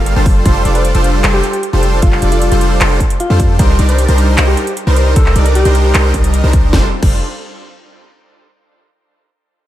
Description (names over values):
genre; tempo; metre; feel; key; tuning
future bass; 153 BPM; 4/4; half-time; F mixolydian; A4 = 441 Hz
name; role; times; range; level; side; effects
supersaw chords; riff; 0.0-7.2 s; G3 to F5; -16 LUFS; equal; lush chorus, sidechain pumping, tape echo
warm 808-style bass; bass; 0.0-7.2 s; F1 to F2; -12 LUFS; equal; tube saturation, sidechain pumping
trap drum kit; drums; 0.1-7.1 s; crash cymbal, handclaps, hi-hat, snare drum; -20 LUFS; equal; overdrive
electronic kick drum; drums; 0.3-7.1 s; none; -12 LUFS; equal; none
breathy alto saxophone; melody; 0.8-6.1 s; F4 to C5; -20 LUFS; left 1 dB; sidechain pumping, analog delay
room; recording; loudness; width
moderate plate reverb, RT60 1.6 s; dreamy mix soaked in reverb; -9 LUFS; side -13 dB against mid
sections
0.0-6.7 A section; 6.7-8.3 B section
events
drop 0.0-6.7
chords
0.3 F69; 3.6 Cm9; 6.7 F69